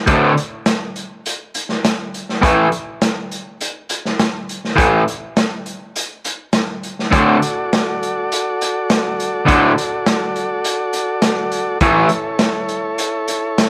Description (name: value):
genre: garage rock duo or trio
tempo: 102 BPM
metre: 4/4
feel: straight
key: D major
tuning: A4 = 441 Hz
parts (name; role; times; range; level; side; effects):
- raw garage guitar; riff; 0.1-12.1 s; D2 to A3; -16 LUFS; equal; overdrive
- raw garage drum kit; drums; 0.1-13.7 s; hi-hat, kick drum, snare drum; -21 LUFS; equal; none
- combo organ; sustained chords; 7.1-13.7 s; E4 to D5; -22 LUFS; equal; none
room: light reverb, small room ambience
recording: none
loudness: -18 LUFS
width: mono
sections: 0.0-13.7 A section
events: none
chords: 0.0 D5; 2.4 A5; 7.1 D; 11.8 A